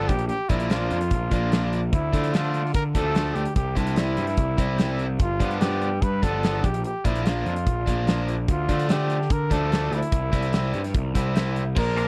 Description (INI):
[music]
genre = indie rock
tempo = 146 BPM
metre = 4/4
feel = straight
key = unclear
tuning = A4 = 440 Hz
[part]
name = breathy trumpet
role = melody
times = 0.0-12.1 s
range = D4 to B4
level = -31 LUFS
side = equal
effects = none
[part]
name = overdriven electric guitar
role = riff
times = 0.0-12.1 s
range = F3 to E4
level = -32 LUFS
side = equal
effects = none
[part]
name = fuzz picked electric bass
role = bass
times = 0.0-12.1 s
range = G1 to D3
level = -28 LUFS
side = equal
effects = overdrive
[part]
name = big rock drum kit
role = drums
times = 0.1-12.1 s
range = crash cymbal, hi-hat, kick drum, snare drum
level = -27 LUFS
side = equal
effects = none
[part]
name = twangy electric guitar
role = riff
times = 12.0-12.1 s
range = F3 to Bb4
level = -31 LUFS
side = equal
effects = ensemble chorus
[sound]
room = little or no reverb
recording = dry, close 1970s-style studio recording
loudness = -24 LUFS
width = mono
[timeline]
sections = 0.0-11.8 A section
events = none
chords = 0.1 Bb; 1.9 Dmadd9; 3.6 C; 5.2 G7; 6.6 Bb; 8.5 Dm; 10.1 C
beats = | 0.30 0.70 1.11 1.52 | 1.93 2.34 2.75 3.16 | 3.56 3.97 4.38 4.79 | 5.20 5.61 6.02 6.43 | 6.84 7.25 7.66 8.07 | 8.48 8.89 9.30 9.71 | 10.12 10.53 10.94 11.35 | 11.76